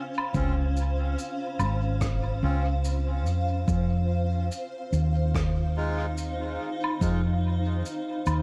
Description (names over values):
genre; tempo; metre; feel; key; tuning
ambient dub; 72 BPM; 4/4; swing 60% on 16ths; F minor; A4 = 440 Hz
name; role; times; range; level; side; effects
granular cloud pad; sustained chords; 0.0-8.4 s; Db4 to F5; -36 LUFS; equal; built-in reverb, vintage 12-bit sampler grit
woodblock, shaker and rim click; drums; 0.2-8.4 s; none; -37 LUFS; equal; dub echo
hollow-body short-scale fingered electric bass; bass; 0.3-8.4 s; Ab1 to F2; -28 LUFS; equal; none
electronic kick drum; drums; 0.3-7.2 s; none; -34 LUFS; equal; overdrive
melodica; stabs; 0.4-7.2 s; Ab3 to F4; -41 LUFS; equal; dub echo
room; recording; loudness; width
light reverb; vinyl crackle; -27 LUFS; mono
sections
0.0-8.4 A section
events
none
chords
0.0 Dbmaj7; 3.7 F7(no3)